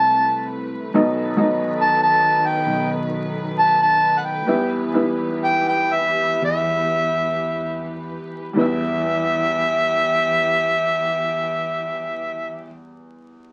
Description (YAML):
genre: acoustic folk-pop ballad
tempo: 53-70 BPM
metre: 4/4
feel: straight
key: E minor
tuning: A4 = 438 Hz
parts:
  - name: mellow harmonica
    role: melody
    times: 0.0-12.6 s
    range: E5 to A5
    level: -20 LUFS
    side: equal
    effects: none
  - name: felt-muted upright piano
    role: accompaniment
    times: 0.0-13.5 s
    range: B1 to E5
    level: -27 LUFS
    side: equal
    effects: none
  - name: warm chamber string section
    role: sustained chords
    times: 0.0-12.6 s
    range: C3 to B4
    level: -33 LUFS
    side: equal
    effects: none
  - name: sustaining fretless electric bass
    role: bass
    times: 0.0-12.6 s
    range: B1 to E2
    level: -33 LUFS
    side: equal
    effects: none
room: moderate club reverb, RT60 0.6 s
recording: very old 78 rpm record, vinyl crackle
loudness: -20 LUFS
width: mono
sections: 0.0-8.6 A section; 8.6-13.1 B section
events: slowing down 0.9-8.6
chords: 0.0 Amadd9/C; 0.9 B7; 4.5 Em